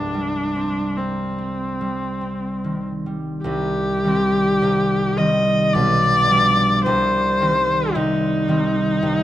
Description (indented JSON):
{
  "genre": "classical, romantic duo for viola and harp",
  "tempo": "47-55 BPM",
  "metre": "3/4",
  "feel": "rubato",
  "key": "C minor",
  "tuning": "A4 = 440 Hz",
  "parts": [
    { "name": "warm viola", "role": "melody", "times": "0.0-9.2 s", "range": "C4 to Eb5", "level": "-20 LUFS", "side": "left 1 dB", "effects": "none" },
    { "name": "concert harp", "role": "accompaniment", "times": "0.0-9.2 s", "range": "B1 to D4", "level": "-21 LUFS", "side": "equal", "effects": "none" }
  ],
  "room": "moderate concert hall reverb, RT60 2.3 s",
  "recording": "close, detailed microphones",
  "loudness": "-17 LUFS",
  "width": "side -13 dB against mid",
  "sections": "0.0-3.4 A section; 3.4-9.2 B section",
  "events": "none",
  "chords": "0.0 Cm; 5.7 G7/B; 6.9 Cm"
}